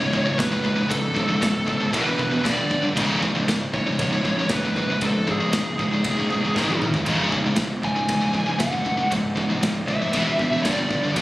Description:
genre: heavy metal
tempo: 117 BPM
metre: 4/4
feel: straight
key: C# phrygian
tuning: A4 = 439 Hz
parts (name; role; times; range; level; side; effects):
- high-gain lead guitar; melody; 0.0-11.1 s; G#4 to G#5; -26 LUFS; equal; distortion, tape echo
- heavy high-gain guitar; riff; 0.0-11.2 s; C#2 to G#3; -27 LUFS; left 4 dB; distortion
- heavy high-gain guitar; riff; 0.0-11.2 s; C#2 to G#3; -26 LUFS; right 3 dB; distortion
- fuzz fingered electric bass; bass; 0.0-11.2 s; C#1 to G#1; -27 LUFS; equal; overdrive
- modern studio drum kit; drums; 0.1-11.2 s; kick drum, ride cymbal, snare drum, toms; -28 LUFS; equal; none
room: little or no reverb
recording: recorded on a phone in the room, studio reverb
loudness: -20 LUFS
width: side -17 dB against mid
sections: 0.0-11.2 A section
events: drum fill 6.6-7.1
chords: 0.0 C#5; 1.9 E5; 2.5 G5; 3.0 C#5; 6.6 G#5; 7.1 C#5; 10.1 E5; 10.7 G5

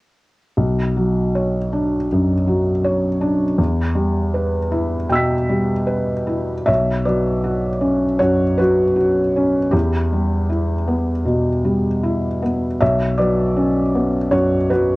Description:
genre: neoclassical minimalist piano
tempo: 79 BPM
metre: 4/4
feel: rubato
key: B minor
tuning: A4 = 441 Hz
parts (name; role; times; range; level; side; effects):
- felt-muted upright piano; solo; 0.6-15.0 s; B1 to B6; -16 LUFS; equal; none
room: wet small room reverb, RT60 0.5 s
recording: worn, warbling old tape, cassette tape, warbly pitch drift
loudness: -16 LUFS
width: side -21 dB against mid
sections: 0.6-6.7 A section; 6.7-15.0 B section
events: none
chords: 0.6 Bmadd9; 3.6 Em; 6.7 Bmadd9; 9.7 Em; 12.8 Bmadd9

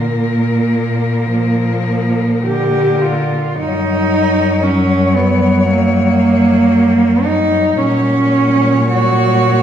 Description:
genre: classical, lyrical piece for cello ensemble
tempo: 51-58 BPM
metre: 4/4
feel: rubato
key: Bb major, F# major from 3.6 s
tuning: A4 = 441 Hz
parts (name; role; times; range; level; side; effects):
- clear cello; melody; 0.0-9.6 s; Bb4 to C#5; -22 LUFS; left 4 dB; none
- rich cello; second line; 0.0-9.6 s; Bb3 to G4; -14 LUFS; right 2 dB; none
- rich cello; bass; 0.0-9.6 s; F#2 to A#2; -17 LUFS; equal; none
- clear cello; accompaniment; 0.1-9.6 s; Bb2 to F#3; -20 LUFS; left 3 dB; none
room: wet recital hall reverb, RT60 1.6 s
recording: heard from further back in the room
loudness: -11 LUFS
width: side -9 dB against mid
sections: 0.0-3.6 A section; 3.6-9.6 B section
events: none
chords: 0.0 Bb; 3.6 F#; 7.8 F#/A#

